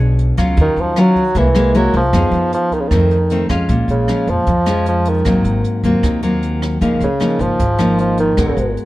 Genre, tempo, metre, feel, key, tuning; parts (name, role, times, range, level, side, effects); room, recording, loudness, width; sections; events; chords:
bossa nova; 154 BPM; 4/4; straight; Bb minor from 3.7 s; A4 = 440 Hz
nylon-string guitar; accompaniment; 0.0-8.9 s; F2 to C#5; -16 LUFS; left 1 dB
upright bass; bass; 0.0-8.7 s; Ab1 to F2; -18 LUFS; equal
jazz brush drum kit; drums; 0.2-8.9 s; hi-hat, kick drum, rim click; -23 LUFS; right 1 dB
mellow bassoon; melody; 0.6-8.7 s; Db3 to Gb3; -17 LUFS; right 1 dB
light reverb; dark, warm production; -13 LUFS; side -17 dB against mid
0.0-3.7 A section; 3.7-8.9 B section
0.0 E13 (rootless); 0.6 Ebm9; 1.4 Caug7; 2.1 Fm7b5; 2.9 F7; 3.7 Bbm7; 5.2 Ab9; 6.8 Db69